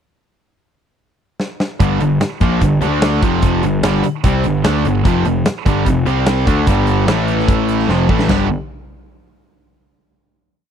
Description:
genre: classic rock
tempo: 148 BPM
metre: 4/4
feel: straight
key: unclear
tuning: A4 = 440 Hz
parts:
  - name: huge arena drum kit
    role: drums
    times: 1.4-8.4 s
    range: china cymbal, hi-hat, kick drum, snare drum, toms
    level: -18 LUFS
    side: equal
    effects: none
  - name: sludgy distorted guitar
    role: riff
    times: 1.8-8.5 s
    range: F2 to D4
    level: -18 LUFS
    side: left 10 dB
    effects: overdrive
  - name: tight distorted guitar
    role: riff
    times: 1.8-8.5 s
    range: F2 to G4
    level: -19 LUFS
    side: right 15 dB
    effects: distortion
  - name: fuzz picked electric bass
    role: bass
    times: 1.8-8.5 s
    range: F1 to D2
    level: -19 LUFS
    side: equal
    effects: overdrive
room: little or no reverb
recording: dry, close 1970s-style studio recording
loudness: -13 LUFS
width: side -8 dB against mid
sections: 0.2-1.8 pickup bar; 1.8-8.3 riff; 8.3-9.9 final chord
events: drum fill 1.4-1.8, 7.9-8.3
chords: 0.2 N.C.; 1.8 G5; 2.8 D5; 3.2 F5; 3.6 G5; 5.1 F5; 6.1 C5; 6.5 D5; 6.7 G5; 7.1 A5; 7.9 F5; 8.3 G5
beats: | 0.17 0.58 0.99 1.40 | 1.80 2.21 2.62 3.03 | 3.43 3.84 4.25 4.65 | 5.06 5.46 5.87 6.28 | 6.68 7.08 7.49 7.89 | 8.30

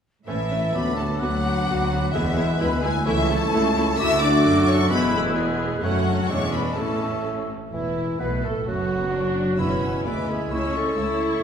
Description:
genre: quick classical-period movement for symphony orchestra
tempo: 130 BPM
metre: 2/4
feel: straight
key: A major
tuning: A4 = 440 Hz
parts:
  - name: rich chamber violin section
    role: melody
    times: 0.3-11.4 s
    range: E4 to E6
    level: -30 LUFS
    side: left 3 dB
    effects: none
  - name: mellow clarinet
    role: second line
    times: 0.3-11.4 s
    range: B3 to B4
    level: -30 LUFS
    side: equal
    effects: none
  - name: rich chamber violin section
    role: second line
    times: 0.3-11.4 s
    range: E4 to E6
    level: -32 LUFS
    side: left 2 dB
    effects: none
  - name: silver concert flute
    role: second line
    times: 0.3-11.4 s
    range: E4 to F#6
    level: -33 LUFS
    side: left 3 dB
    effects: none
  - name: warm oboe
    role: second line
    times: 0.3-11.4 s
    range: E4 to F#5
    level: -34 LUFS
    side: right 1 dB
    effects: none
  - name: mellow bassoon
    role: accompaniment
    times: 0.3-11.4 s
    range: E3 to B3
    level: -29 LUFS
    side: right 3 dB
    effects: none
  - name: rich chamber viola section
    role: accompaniment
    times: 0.3-11.4 s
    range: F#3 to G#4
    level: -30 LUFS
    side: right 1 dB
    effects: none
  - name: mellow French horn section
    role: sustained chords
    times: 0.3-11.4 s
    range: E3 to E4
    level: -27 LUFS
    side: left 2 dB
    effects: none
  - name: clear chamber double bass section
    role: bass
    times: 0.3-11.4 s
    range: E1 to D2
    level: -29 LUFS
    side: right 2 dB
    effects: none
  - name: rich symphonic cello section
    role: bass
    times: 0.3-11.4 s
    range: C#2 to B2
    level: -29 LUFS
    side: equal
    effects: none
room: wet recital hall reverb, RT60 1.7 s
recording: heard from further back in the room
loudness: -20 LUFS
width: side -7 dB against mid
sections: 0.3-7.7 A section; 7.7-11.4 A section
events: none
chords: 0.3 A; 0.7 D; 1.2 Bm/D; 2.1 E; 2.6 E7/D; 3.1 A/C#; 4.0 D; 4.9 E; 5.8 F#m; 6.3 E7; 6.8 A; 7.7 N.C.; 8.2 Asus2; 8.7 Bm/F#; 9.6 E; 10.1 E7/D; 10.5 A/C#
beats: | 0.28 0.74 | 1.21 1.68 | 2.14 2.60 | 3.06 3.53 | 3.98 4.44 | 4.90 5.36 | 5.83 6.29 | 6.77 7.25 | 7.73 8.20 | 8.67 9.13 | 9.59 10.05 | 10.51 10.98 | 11.43

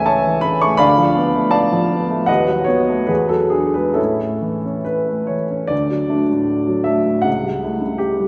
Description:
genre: classical, romantic character piece for solo piano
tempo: 66-84 BPM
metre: 2/4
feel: rubato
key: A major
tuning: A4 = 440 Hz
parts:
  - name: warm upright piano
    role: solo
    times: 0.0-8.3 s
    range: C#2 to C#6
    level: -18 LUFS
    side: equal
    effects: none
room: wet concert hall reverb, RT60 2.2 s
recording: recorded in a church or concert hall, nothing above 10.4 kHz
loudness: -18 LUFS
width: mono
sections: 0.0-5.7 A section; 5.7-8.3 B section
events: none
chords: 0.0 A/C#; 0.8 Bm7b5/D; 2.3 B7/D#; 3.1 E9; 4.0 A; 5.7 D; 7.3 A7/C#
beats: 0.09 | 0.81 1.54 | 2.28 3.09 | 3.98 4.87 | 5.72 6.50 | 7.26 8.02

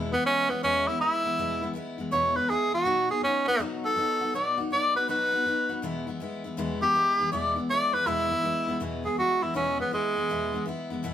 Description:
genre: rock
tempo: 162 BPM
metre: 4/4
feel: swing 65% on 8ths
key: E major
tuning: A4 = 440 Hz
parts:
  - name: picked steel-string acoustic guitar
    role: accompaniment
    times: 0.0-11.1 s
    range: E2 to F#4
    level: -32 LUFS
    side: left 2 dB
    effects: none
  - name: breathy tenor saxophone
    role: melody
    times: 0.1-10.7 s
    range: G#3 to D5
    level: -24 LUFS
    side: equal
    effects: none
room: moderate studio reverb, RT60 0.8 s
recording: band playing live in one room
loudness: -24 LUFS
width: side -10 dB against mid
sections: 0.0-8.8 A section; 8.8-11.1 B section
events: tenor saxophone solo 0.0-8.8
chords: 0.0 E; 2.9 B; 5.8 E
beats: 0.27 0.64 1.01 | 1.38 1.75 2.12 2.49 | 2.87 3.24 3.61 3.98 | 4.35 4.72 5.09 5.47 | 5.84 6.21 6.58 6.95 | 7.32 7.69 8.07 8.44 | 8.81 9.18 9.55 9.92 | 10.30 10.67 11.04

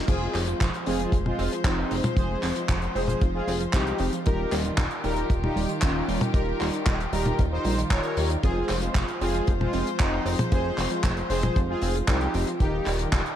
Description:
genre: italo disco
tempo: 115 BPM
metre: 4/4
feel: straight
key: F minor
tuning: A4 = 440 Hz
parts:
  - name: warm chamber string section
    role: sustained chords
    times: 0.0-13.4 s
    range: Eb3 to C5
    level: -34 LUFS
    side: left 2 dB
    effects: none
  - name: analog synth brass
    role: stabs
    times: 0.0-13.2 s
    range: G3 to C5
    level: -35 LUFS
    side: left 3 dB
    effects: chorus, tape echo
  - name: chorused synth bass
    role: bass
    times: 0.0-13.2 s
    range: Eb1 to Eb2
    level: -29 LUFS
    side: equal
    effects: none
  - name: analog synth brass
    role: melody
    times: 0.1-12.9 s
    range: Ab3 to Db5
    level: -30 LUFS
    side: equal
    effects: chorus, cassette tape, tape echo
  - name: analog pluck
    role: arpeggios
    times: 0.1-13.2 s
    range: Eb3 to C4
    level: -33 LUFS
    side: right 3 dB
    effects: chorus, tape echo
  - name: damped 70s drum kit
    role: drums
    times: 0.1-13.4 s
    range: crash cymbal, handclaps, hi-hat, toms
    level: -30 LUFS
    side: equal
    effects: small room ambience
  - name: kick drum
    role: drums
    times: 0.1-13.2 s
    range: none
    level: -23 LUFS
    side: equal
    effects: small room ambience
room: light reverb, studio ambience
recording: dark, warm production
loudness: -23 LUFS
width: side -10 dB against mid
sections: 0.1-13.4 A section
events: none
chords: 0.1 Fm; 4.3 Ebadd9; 8.4 Fm; 12.6 Ebadd9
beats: | 0.08 0.60 1.13 1.65 | 2.17 2.69 3.21 3.74 | 4.26 4.78 5.30 5.82 | 6.34 6.87 7.39 7.91 | 8.43 8.95 9.47 10.00 | 10.52 11.04 11.56 12.08 | 12.61 13.13

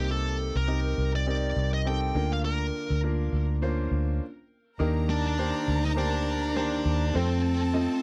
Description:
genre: piano-driven pop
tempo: 102 BPM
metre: 4/4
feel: swing 56% on 16ths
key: unclear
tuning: A4 = 440 Hz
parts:
  - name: high-gain lead guitar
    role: melody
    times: 0.0-8.0 s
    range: C4 to G5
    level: -32 LUFS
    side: equal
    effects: distortion
  - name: bright concert grand piano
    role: accompaniment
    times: 0.0-8.0 s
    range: C3 to Eb5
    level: -34 LUFS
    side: equal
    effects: none
  - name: vintage muted fingered electric bass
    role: bass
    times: 0.0-7.9 s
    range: C2 to F2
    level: -30 LUFS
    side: equal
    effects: none
  - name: rich studio violin section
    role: second line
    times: 4.8-8.0 s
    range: A4 to Bb5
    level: -40 LUFS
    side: equal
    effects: none
room: light reverb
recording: dry, close 1970s-style studio recording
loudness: -27 LUFS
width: mono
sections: 0.0-4.8 A section; 4.8-8.0 B section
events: stop 4.2-4.8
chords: 0.0 Cm7; 2.2 Bb/D; 4.8 Ebmaj7; 7.1 F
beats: | 0.10 0.68 1.27 1.86 | 2.45 3.04 3.62 4.21 | 4.80 5.38 5.97 6.56 | 7.15 7.73

